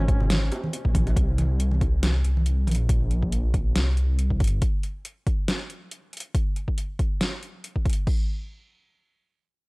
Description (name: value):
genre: deep dubstep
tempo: 139 BPM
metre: 4/4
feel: swing 54% on 16ths, half-time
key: unclear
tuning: A4 = 438 Hz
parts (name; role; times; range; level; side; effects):
- warm duduk; melody; 0.0-0.7 s; Db4; -38 LUFS; right 1 dB; dub echo
- dark analog pad; sustained chords; 0.0-1.2 s; C5; -45 LUFS; left 2 dB; none
- dark detuned saw bass; bass; 0.0-4.6 s; G1 to C2; -22 LUFS; equal; none
- deep house drum kit; drums; 0.1-8.2 s; crash cymbal, kick drum; -24 LUFS; equal; none
- dubstep drum kit; drums; 0.1-8.0 s; hi-hat, snare drum; -30 LUFS; equal; overdrive
- bongos and congas; percussion; 0.2-2.8 s; none; -31 LUFS; right 1 dB; none
room: digital ambience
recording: dry, gritty hardware recording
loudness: -22 LUFS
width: side -28 dB against mid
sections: 0.0-1.2 A section; 1.2-8.1 B section; 8.1-9.7 C section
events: drop 0.0-1.2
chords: 0.0 Bbm; 1.2 C5; 8.1 N.C.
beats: 0.30 0.73 | 1.16 1.60 2.03 2.46 | 2.89 3.32 3.75 4.19 | 4.62 5.05 5.48 5.91 | 6.34 6.78 7.21 7.64 | 8.07